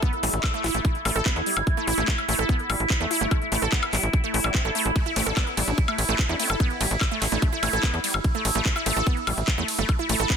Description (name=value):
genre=psychedelic trance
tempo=146 BPM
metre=4/4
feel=straight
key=unclear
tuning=A4 = 439 Hz
part: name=overtone-sweeping drone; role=sustained chords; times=0.0-10.4 s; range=E4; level=-29 LUFS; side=right 2 dB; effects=chorus, built-in reverb, phaser, sidechain pumping
part: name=wide unison pluck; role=riff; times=0.0-10.4 s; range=G3 to A4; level=-28 LUFS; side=right 1 dB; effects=auto-pan, sidechain pumping, ping-pong delay
part: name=drum and bass drum kit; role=drums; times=0.0-10.4 s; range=handclaps, hi-hat, ride cymbal, woodblock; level=-27 LUFS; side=left 2 dB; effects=small room ambience
part: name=electronic kick drum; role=drums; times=0.0-10.4 s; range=none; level=-24 LUFS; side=equal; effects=small room ambience
part: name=formant-sweep wobble bass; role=second line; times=0.2-0.5, 5.2-7.5 s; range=A3 to D4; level=-40 LUFS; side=left 3 dB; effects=none
part: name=tight sequencer bass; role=bass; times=0.2-10.3 s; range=G1 to E2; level=-27 LUFS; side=equal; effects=none
room=light reverb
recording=dense, heavily limited modern master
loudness=-21 LUFS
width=side -7 dB against mid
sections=0.0-10.4 A section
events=none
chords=0.0 A5